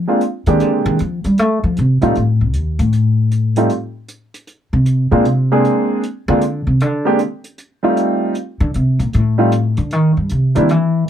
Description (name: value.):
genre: jazz piano trio.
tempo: 155 BPM.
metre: 4/4.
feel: swing 65% on 8ths.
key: F mixolydian.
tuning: A4 = 440 Hz.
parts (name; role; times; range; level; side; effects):
upright bass; bass; 0.0-11.1 s; C2 to A3; -14 LUFS; left 1 dB; none.
clear upright piano; melody; 0.1-10.7 s; G3 to Ab4; -15 LUFS; right 1 dB; none.
hi-hat; drums; 0.2-11.1 s; none; -38 LUFS; right 2 dB; none.
room: little or no reverb.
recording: close, detailed microphones.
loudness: -13 LUFS.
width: side -10 dB against mid.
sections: 0.0-11.1 A section.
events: upright bass solo 0.0-11.1.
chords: 0.0 Bb9; 1.4 F (rootless); 4.5 Bb9; 7.6 F9 (rootless).